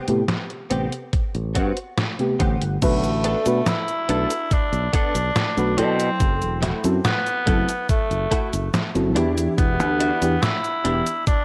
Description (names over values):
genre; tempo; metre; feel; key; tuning
vaporwave; 71 BPM; 4/4; straight; unclear; A4 = 440 Hz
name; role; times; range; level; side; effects
mellow FM electric piano; accompaniment; 0.0-11.1 s; C3 to F#5; -27 LUFS; equal; analog chorus, cassette tape, analog delay
direct-recorded clean electric guitar; riff; 0.0-11.1 s; A3 to A4; -32 LUFS; equal; ensemble chorus, analog delay
fingered electric bass; bass; 0.1-11.3 s; E1 to B2; -26 LUFS; equal; tube saturation
detuned 8-bit digital drum machine; drums; 0.1-11.4 s; cabasa, crash cymbal, hi-hat, snare drum; -28 LUFS; equal; small room ambience, gated reverb
electronic kick drum; drums; 1.1-11.4 s; none; -24 LUFS; equal; small room ambience
raspy tenor saxophone; melody; 2.8-11.4 s; A3 to E4; -27 LUFS; equal; tape echo
room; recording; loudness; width
light reverb, digital ambience; cassette tape; -22 LUFS; mono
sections
0.0-2.8 A section; 2.8-11.4 B section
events
none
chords
0.0 Am9; 2.8 Bm7; 6.2 F#m7b5; 9.2 Em7